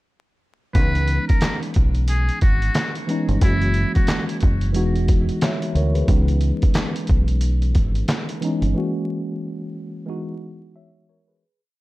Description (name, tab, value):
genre	hip hop, boom-bap hip-hop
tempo	90 BPM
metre	4/4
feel	swing 60% on 16ths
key	C# dorian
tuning	A4 = 440 Hz
part	trumpet with metal mute	melody	0.7-4.2 s	E4 to B4	-27 LUFS	equal	high-pass filter, low-pass filter, digital delay
part	mellow tine electric piano	accompaniment	0.7-11.6 s	E3 to E5	-25 LUFS	equal	medium stereo tremolo, cassette tape, high-pass filter, low-pass filter
part	trip hop sampler-style drum kit	drums	0.7-8.7 s	handclaps, hi-hat, kick drum, snare drum	-20 LUFS	equal	none
part	deep dub fingered electric bass	bass	0.8-8.7 s	E1 to D2	-20 LUFS	equal	none
room	little or no reverb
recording	dark, warm production, vinyl crackle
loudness	-18 LUFS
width	side -18 dB against mid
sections	0.8-11.4 verse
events	break 8.8-11.4; fade-out 8.8-11.4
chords	0.8 C#m7; 3.4 F#7; 4.8 Emaj7; 6.1 C#m7; 8.8 F#7; 10.1 Emaj7